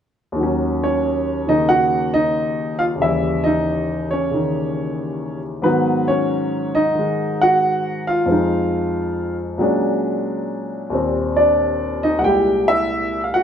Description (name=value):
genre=solo jazz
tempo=91 BPM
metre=4/4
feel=swing 67% on 8ths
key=Eb minor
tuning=A4 = 441 Hz
part: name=clear grand piano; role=solo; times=0.3-13.4 s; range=C2 to G5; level=-17 LUFS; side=equal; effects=none
room=moderate stone room reverb, RT60 1.1 s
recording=band playing live in one room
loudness=-17 LUFS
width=side -8 dB against mid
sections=0.4-13.4 A section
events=none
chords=0.4 Ebm7; 3.0 Eb7b9; 5.6 Abm7; 8.3 Fm7; 9.6 Bb7alt; 10.9 Eb6; 12.2 C7b13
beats=| 0.36 1.02 1.68 2.34 | 3.00 3.66 4.32 4.98 | 5.64 6.30 6.96 7.62 | 8.28 8.93 9.59 10.25 | 10.91 11.57 12.23 12.89